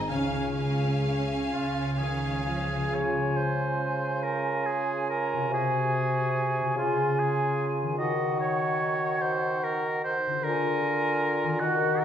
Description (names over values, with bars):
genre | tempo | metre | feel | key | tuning
classical, slow romantic movement for symphony orchestra | 41-52 BPM (dotted quarters) | 6/8 | rubato | Db major | A4 = 440 Hz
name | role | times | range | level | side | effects
clear studio violin section | melody | 0.0-2.9 s | Ab5 | -38 LUFS | left 4 dB | none
clear clarinet | second line | 0.0-12.0 s | Db4 to Gb4 | -35 LUFS | right 2 dB | none
clear studio violin section | second line | 0.0-2.9 s | F5 | -36 LUFS | left 1 dB | none
rich studio viola section | accompaniment | 0.0-2.9 s | Db4 | -34 LUFS | right 1 dB | none
concert harp | arpeggios | 0.0-12.0 s | Ab2 to F5 | -31 LUFS | left 3 dB | none
rich studio cello section | bass | 0.1-2.9 s | Db3 to F3 | -34 LUFS | right 2 dB | none
rich studio double bass section | bass | 0.1-2.8 s | Db2 | -36 LUFS | right 2 dB | none
warm oboe | second line | 1.5-12.0 s | F4 to Eb5 | -30 LUFS | right 2 dB | none
silver concert flute | second line | 2.9-12.0 s | Gb5 to Ab5 | -31 LUFS | equal | none
clear bassoon | accompaniment | 2.9-12.0 s | C3 to Eb3 | -32 LUFS | right 2 dB | none
room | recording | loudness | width
wet recital hall reverb, RT60 1.5 s | recorded in a church or concert hall | -25 LUFS | side -9 dB against mid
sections
0.0-2.9 A section; 2.9-12.0 B section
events
none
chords
0.1 Db; 5.5 Ab7/C; 6.8 Db; 8.0 Ebm